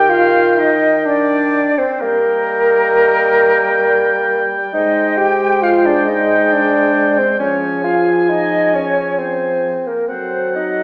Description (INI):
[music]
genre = classical, slow romantic movement for wind quintet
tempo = 67 BPM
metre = 3/4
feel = uneven beats, rubato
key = unclear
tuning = A4 = 441 Hz
[part]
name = bright concert flute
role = melody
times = 0.0-10.8 s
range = Bb4 to G5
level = -22 LUFS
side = equal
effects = none
[part]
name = clear oboe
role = second line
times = 0.0-10.8 s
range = F#5 to Ab5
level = -22 LUFS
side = equal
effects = none
[part]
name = clear French horn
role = accompaniment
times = 0.0-10.8 s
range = Eb3 to Ab3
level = -26 LUFS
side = equal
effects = none
[part]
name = warm clarinet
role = accompaniment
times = 0.0-10.8 s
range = Ab4 to Eb5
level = -26 LUFS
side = equal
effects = none
[part]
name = mellow bassoon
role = bass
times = 0.0-10.8 s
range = Bb3 to G4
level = -18 LUFS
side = equal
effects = none
[sound]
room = wet recital hall reverb, RT60 1.4 s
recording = heard from further back in the room, small speaker sound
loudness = -15 LUFS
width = mono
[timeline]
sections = 0.0-10.8 A section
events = none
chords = 0.0 Eb; 2.0 Eb/G; 4.7 Abmaj7; 7.4 Db/F; 10.1 F#dim7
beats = 0.10 1.06 | 2.01 2.93 3.84 | 4.74 5.63 6.52 | 7.40 8.29 9.18 | 10.09